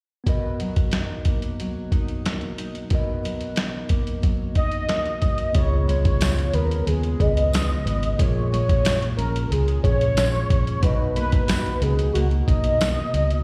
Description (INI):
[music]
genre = indie pop, bedroom pop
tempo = 91 BPM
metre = 4/4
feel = straight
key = B lydian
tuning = A4 = 440 Hz
[part]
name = tine electric piano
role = accompaniment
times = 0.2-13.4 s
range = A#3 to D#5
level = -36 LUFS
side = equal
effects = cassette tape, slapback echo
[part]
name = nylon-string guitar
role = accompaniment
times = 0.3-13.4 s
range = A#2 to F#4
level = -33 LUFS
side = equal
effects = analog chorus, vibrato effect, slapback echo
[part]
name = boom bap sampler-style drum kit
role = drums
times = 0.3-13.4 s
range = hi-hat, kick drum, snare drum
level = -25 LUFS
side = equal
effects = none
[part]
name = warm velvety synth lead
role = melody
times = 4.6-13.4 s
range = F#4 to D#5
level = -28 LUFS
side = equal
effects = subtle chorus, slapback echo, analog delay
[part]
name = vintage muted fingered electric bass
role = bass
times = 5.5-13.4 s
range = G#1 to D#2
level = -25 LUFS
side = equal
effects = none
[part]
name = tambourine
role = percussion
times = 6.2-13.0 s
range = none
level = -40 LUFS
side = equal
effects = none
[sound]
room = little or no reverb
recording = live gig heard through the venue's PA, recital hall reverb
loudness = -22 LUFS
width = mono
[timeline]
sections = 0.3-5.6 A section; 5.6-13.4 B section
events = none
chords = 0.3 Bmaj7; 5.6 C#7; 8.2 A#m7; 10.8 Bmaj7